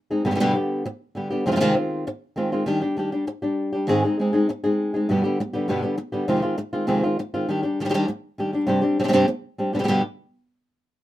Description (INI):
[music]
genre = flamenco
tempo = 199 BPM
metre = 4/4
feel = straight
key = G phrygian dominant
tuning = A4 = 440 Hz
[part]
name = flamenco guitar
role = solo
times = 0.1-10.0 s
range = F2 to Ab4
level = -20 LUFS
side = equal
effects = none
[sound]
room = light reverb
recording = minimal, uncompressed stereo recording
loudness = -21 LUFS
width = side -14 dB against mid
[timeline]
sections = 0.3-9.9 A section; 9.9-11.0 B section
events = none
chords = 0.3 G; 1.5 Fm7; 2.7 Ebmaj7; 3.9 Ab; 5.1 G; 6.3 Fm7; 7.5 Ebmaj7; 8.7 Gsus4; 9.9 G